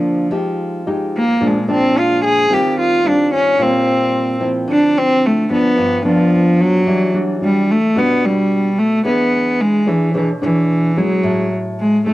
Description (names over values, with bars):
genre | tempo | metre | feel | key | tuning
bossa nova | 110 BPM | 4/4 | straight | unclear | A4 = 440 Hz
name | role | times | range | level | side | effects
rich cello | melody | 0.0-12.1 s | E3 to Ab4 | -14 LUFS | equal | none
nylon-string guitar | accompaniment | 0.0-12.1 s | G2 to C#5 | -19 LUFS | equal | cassette tape
room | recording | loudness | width
light reverb | home recording on cassette | -13 LUFS | side -16 dB against mid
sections
0.0-6.9 A section; 6.9-12.1 B section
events
cello solo 0.0-6.9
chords
0.3 Fm9; 1.4 Bb7; 2.5 Eb69; 4.7 Dm9; 5.8 G7; 6.9 Em9; 9.0 E6; 11.2 Amaj7